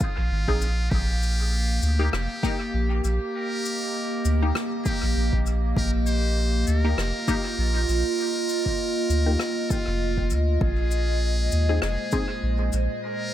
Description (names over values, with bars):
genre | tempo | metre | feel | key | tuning
ambient dub | 99 BPM | 4/4 | swing 56% on 16ths | unclear | A4 = 441 Hz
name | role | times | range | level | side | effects
trumpet with metal mute | melody | 0.0-13.3 s | F4 to C5 | -31 LUFS | equal | dub echo
warbly tape-like pad | sustained chords | 0.0-13.3 s | Bb2 to F5 | -28 LUFS | right 1 dB | chorus, built-in reverb
cabasa and rim click | drums | 0.0-12.9 s | none | -34 LUFS | left 3 dB | dub echo
electronic kick drum | drums | 0.0-12.3 s | none | -27 LUFS | equal | none
soft dub sub bass | bass | 0.2-12.9 s | F1 to Eb2 | -23 LUFS | equal | none
filtered dub chord stab | stabs | 0.5-12.3 s | Bb3 to Ab4 | -32 LUFS | left 3 dB | phaser, cassette tape, dub echo
room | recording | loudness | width
light reverb | none | -22 LUFS | side -12 dB against mid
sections
0.0-13.3 A section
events
none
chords
0.0 Bb9sus4; 0.9 Eb; 10.6 Bb9sus4